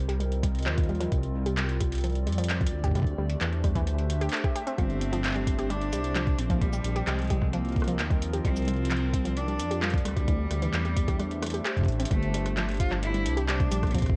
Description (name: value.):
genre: IDM.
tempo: 131 BPM.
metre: 4/4.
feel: straight.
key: G dorian.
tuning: A4 = 442 Hz.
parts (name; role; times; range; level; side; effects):
hollow soft pad; sustained chords; 0.0-14.2 s; F3 to E5; -38 LUFS; equal; chorus.
dark detuned saw bass; bass; 0.0-14.1 s; G1 to F2; -32 LUFS; equal; tube saturation.
warbly dusty pluck; arpeggios; 0.1-14.0 s; E3 to G4; -37 LUFS; equal; chorus, digital delay.
electro analog drum machine; drums; 0.1-14.2 s; handclaps, hi-hat, rim click, shaker; -37 LUFS; equal; none.
electronic kick drum; drums; 0.4-14.2 s; none; -29 LUFS; equal; none.
rich cello; melody; 4.8-14.2 s; F3 to F4; -36 LUFS; equal; vintage 12-bit sampler grit, digital delay.
room: light reverb.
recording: worn, warbling old tape, cassette tape, warbly pitch drift.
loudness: -28 LUFS.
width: mono.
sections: 0.0-12.1 A section; 12.1-14.2 B section.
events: drum fill 11.9.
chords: 0.0 Bbsus24; 1.1 C9sus4; 2.7 D9sus4; 4.8 Gsus4; 6.6 Bb9sus4; 8.4 C9sus4; 10.1 D9sus4; 12.1 Gsus4.